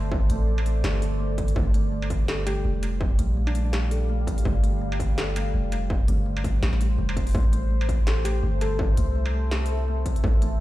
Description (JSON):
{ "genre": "half-time drum and bass", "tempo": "166 BPM", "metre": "4/4", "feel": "swing 56% on 16ths, half-time", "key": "unclear", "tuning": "A4 = 440 Hz", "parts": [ { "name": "deep dark ambient pad", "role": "sustained chords", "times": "0.0-10.6 s", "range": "G3 to F5", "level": "-33 LUFS", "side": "equal", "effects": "chorus, built-in reverb, vintage 12-bit sampler grit, sidechain pumping" }, { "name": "kalimba", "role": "arpeggios", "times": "0.0-10.6 s", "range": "E3 to A4", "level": "-34 LUFS", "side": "equal", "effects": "dub echo" }, { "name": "long sustained 808-style bass", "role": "bass", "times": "0.0-10.6 s", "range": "F1 to C2", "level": "-24 LUFS", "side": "equal", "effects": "none" }, { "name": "electronic kick drum", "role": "drums", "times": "0.1-10.3 s", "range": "none", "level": "-24 LUFS", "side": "equal", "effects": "distortion" }, { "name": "industrial drum kit", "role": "drums", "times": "0.3-10.5 s", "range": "hi-hat, snare drum, struck metal", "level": "-34 LUFS", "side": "equal", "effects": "none" }, { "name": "soft struck synth lead", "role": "melody", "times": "2.5-3.9, 8.2-8.9 s", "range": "D4 to A4", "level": "-36 LUFS", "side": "left 2 dB", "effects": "chorus, dub echo" } ], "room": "little or no reverb", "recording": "played on a big sound system in a bare room, stone room reverb", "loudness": "-22 LUFS", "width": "side -16 dB against mid", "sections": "0.0-10.6 A section", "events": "none", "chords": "0.0 Am; 1.6 Gm7; 7.3 Am", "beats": "| 0.12 0.48 0.84 1.20 | 1.56 1.93 2.29 2.65 | 3.01 3.37 3.73 4.09 | 4.46 4.82 5.18 5.54 | 5.90 6.26 6.62 6.99 | 7.35 7.71 8.07 8.43 | 8.79 9.15 9.52 9.88 | 10.24 10.60" }